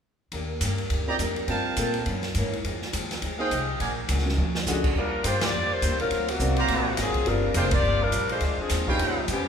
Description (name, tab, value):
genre	jazz, big band swing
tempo	208 BPM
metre	4/4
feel	swing 60% on 8ths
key	Eb major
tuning	A4 = 441 Hz
part	picked old ladder-braced acoustic guitar	accompaniment	0.3-9.5 s	Gb2 to A4	-33 LUFS	left 2 dB	none
part	upright bass	bass	0.3-9.5 s	F1 to Bb2	-28 LUFS	equal	none
part	open jazz drum kit	drums	0.3-9.4 s	crash cymbal, hi-hat, kick drum, ride cymbal, snare drum, toms	-30 LUFS	equal	none
part	warm upright piano	accompaniment	1.1-4.4, 6.4-9.3 s	Bb2 to E#5	-33 LUFS	right 2 dB	none
part	clear trumpet section	stabs	1.1-9.3 s	Ab4 to A#5	-30 LUFS	right 2 dB	none
part	warm saxophone section	melody	4.7-9.5 s	C3 to D5	-26 LUFS	left 2 dB	none
room	wet recital hall reverb, RT60 1.6 s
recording	recorded in a church or concert hall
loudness	-23 LUFS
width	side -7 dB against mid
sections	0.3-5.0 A section; 5.0-9.5 B section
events	drum fill 4.4; band accent 5.4, 7.7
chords	0.3 Ebmaj7; 1.5 Gm9; 2.1 Gb13; 2.6 Fm9; 3.8 Bb7alt; 5.0 Ebmaj13; 6.1 D7alt; 7.3 Gm7; 8.4 Dm7b5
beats	| 0.32 0.61 0.90 1.19 | 1.48 1.77 2.06 2.35 | 2.64 2.93 3.22 3.51 | 3.79 4.08 4.37 4.66 | 4.95 5.24 5.53 5.82 | 6.11 6.40 6.68 6.97 | 7.26 7.55 7.84 8.13 | 8.42 8.71 9.00 9.29